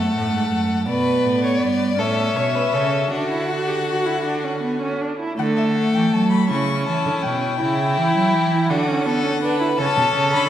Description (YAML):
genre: classical, baroque-style fugue for string quartet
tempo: 54 BPM (dotted quarters)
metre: 6/8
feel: straight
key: D major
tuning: A4 = 442 Hz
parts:
  - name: dark violin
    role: melody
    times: 0.0-10.5 s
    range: D5 to C#6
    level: -24 LUFS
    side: left 6 dB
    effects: none
  - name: rich violin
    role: second line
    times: 0.0-10.5 s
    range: E4 to D5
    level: -25 LUFS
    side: left 1 dB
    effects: none
  - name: warm viola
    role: accompaniment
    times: 0.0-10.5 s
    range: A3 to G4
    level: -22 LUFS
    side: equal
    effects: none
  - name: rich cello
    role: bass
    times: 0.0-10.5 s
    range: F#2 to F#3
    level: -23 LUFS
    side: right 3 dB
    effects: none
room: wet recital hall reverb, RT60 1.6 s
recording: none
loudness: -18 LUFS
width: side -11 dB against mid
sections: 0.0-5.4 A section; 5.4-10.5 B section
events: none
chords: 0.0 F#madd9; 0.9 G; 2.0 A; 3.1 D; 6.5 C#dim; 8.7 D; 9.8 A